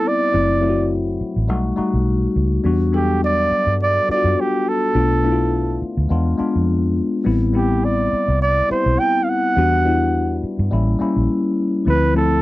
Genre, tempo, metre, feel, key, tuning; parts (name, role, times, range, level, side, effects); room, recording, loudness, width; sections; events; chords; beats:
soul; 104 BPM; 4/4; swing 54% on 16ths; A minor; A4 = 441 Hz
warm flugelhorn; melody; 0.0-12.4 s; G4 to G5; -19 LUFS; right 2 dB
tine electric piano; accompaniment; 0.0-12.4 s; F3 to A4; -20 LUFS; left 3 dB; phaser
vintage muted fingered electric bass; bass; 0.3-12.4 s; F#1 to G2; -20 LUFS; equal
little or no reverb; dry, close 1970s-style studio recording; -16 LUFS; side -17 dB against mid
0.0-12.4 A section
0.3 F#m7b5; 1.5 B7b13; 2.6 Em9; 4.9 Bm7b5; 6.1 E7b9; 7.3 Am7; 9.6 Em9; 10.7 A7b9; 11.9 Dm9
| 0.33 0.91 1.49 2.06 | 2.64 3.22 3.79 4.37 | 4.95 5.53 6.10 6.68 | 7.26 7.83 8.41 8.99 | 9.56 10.14 10.72 11.29 | 11.87